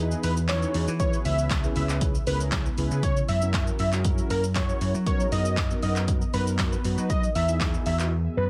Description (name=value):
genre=dance-pop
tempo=118 BPM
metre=4/4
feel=straight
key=unclear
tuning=A4 = 441 Hz
part: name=mellow synth brass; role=accompaniment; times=0.0-8.1 s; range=B3 to C#5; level=-36 LUFS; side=equal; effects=chorus, sidechain pumping
part: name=glassy FM pad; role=sustained chords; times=0.0-8.5 s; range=C#3 to B4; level=-40 LUFS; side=equal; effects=none
part: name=vintage slap bass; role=bass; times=0.0-8.5 s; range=C#2 to F#3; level=-29 LUFS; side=equal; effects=sidechain pumping
part: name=punchy analog drum machine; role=drums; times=0.1-8.1 s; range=handclaps, hi-hat, kick drum, shaker, snare drum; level=-30 LUFS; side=equal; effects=none
part: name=unison lead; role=melody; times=0.2-8.5 s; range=A#4 to E5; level=-32 LUFS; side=equal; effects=sidechain pumping, digital delay
room=little or no reverb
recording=none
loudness=-25 LUFS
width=mono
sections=0.0-8.5 A section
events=break 0.0-1.0; silent gap 8.1-8.5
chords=0.0 Emaj7; 1.0 C#m7; 3.0 F#7; 5.1 Bmaj7/F#; 7.1 Emaj7